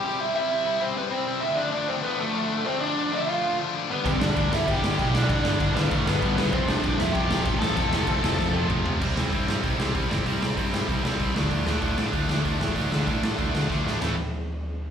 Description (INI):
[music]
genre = punk rock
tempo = 194 BPM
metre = 4/4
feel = straight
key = unclear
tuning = A4 = 441 Hz
[part]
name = smooth overdriven lead guitar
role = melody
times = 0.0-8.7 s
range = A3 to A5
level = -26 LUFS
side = right 1 dB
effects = slapback echo
[part]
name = distorted electric guitar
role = riff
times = 0.0-14.1 s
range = F2 to A4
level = -29 LUFS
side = left 10 dB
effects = overdrive, slapback echo
[part]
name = tight distorted guitar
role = riff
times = 4.0-14.1 s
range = F2 to D4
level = -29 LUFS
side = right 10 dB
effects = distortion
[part]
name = overdriven picked electric bass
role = bass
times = 4.1-14.2 s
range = F1 to A2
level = -27 LUFS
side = equal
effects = none
[part]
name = raw garage drum kit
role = drums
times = 4.1-14.1 s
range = crash cymbal, hi-hat, kick drum, snare drum, toms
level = -27 LUFS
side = equal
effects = none
[sound]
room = small room ambience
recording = live gig heard through the venue's PA, club reverb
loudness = -22 LUFS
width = side -8 dB against mid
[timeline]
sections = 0.0-9.0 A section; 9.0-14.0 B section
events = drum fill 8.4-9.0, 13.7-14.0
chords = 0.0 C; 1.4 Dm; 3.9 G; 6.5 F; 9.0 C; 11.3 Dm; 14.0 Am